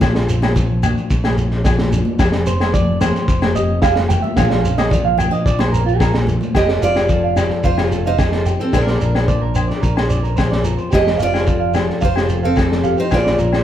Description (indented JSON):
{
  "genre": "highlife guitar band",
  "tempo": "110 BPM",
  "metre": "4/4",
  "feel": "straight",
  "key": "F mixolydian",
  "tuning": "A4 = 440 Hz",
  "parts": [
    { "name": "nylon-string guitar", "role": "accompaniment", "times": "0.0-13.6 s", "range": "F2 to G4", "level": "-24 LUFS", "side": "left 5 dB", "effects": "none" },
    { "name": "fingered electric bass", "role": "bass", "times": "0.0-13.6 s", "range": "F1 to Bb1", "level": "-20 LUFS", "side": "equal", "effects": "none" },
    { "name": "crunchy breakbeat drum kit", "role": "drums", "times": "0.0-13.6 s", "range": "kick drum, snare drum", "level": "-19 LUFS", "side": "equal", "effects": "none" },
    { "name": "agogo bells", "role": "percussion", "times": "0.0-13.6 s", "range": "none", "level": "-27 LUFS", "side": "left 7 dB", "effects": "none" },
    { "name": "congas", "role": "percussion", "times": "0.0-6.5 s", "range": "none", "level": "-24 LUFS", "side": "right 1 dB", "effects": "none" },
    { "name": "shekere", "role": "percussion", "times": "0.0-13.5 s", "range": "none", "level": "-26 LUFS", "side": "right 2 dB", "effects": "none" },
    { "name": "electric guitar at the edge of break-up", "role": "arpeggios", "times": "2.5-13.6 s", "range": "F4 to G5", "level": "-22 LUFS", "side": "right 5 dB", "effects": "none" },
    { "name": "picked steel-string acoustic guitar", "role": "melody", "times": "6.6-13.6 s", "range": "C4 to Eb5", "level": "-20 LUFS", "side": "right 1 dB", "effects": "slapback echo" }
  ],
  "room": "moderate large studio reverb, RT60 1.0 s",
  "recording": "band playing live in one room",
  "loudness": "-14 LUFS",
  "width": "side -11 dB against mid",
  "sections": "0.0-6.6 A section; 6.6-13.6 B section",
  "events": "clean electric guitar solo 0.0-6.6",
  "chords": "0.0 Bbadd9; 2.2 Fadd9; 4.4 Bbadd9; 6.6 Fadd9; 8.7 Bbadd9; 10.9 Fadd9; 13.1 Bbadd9"
}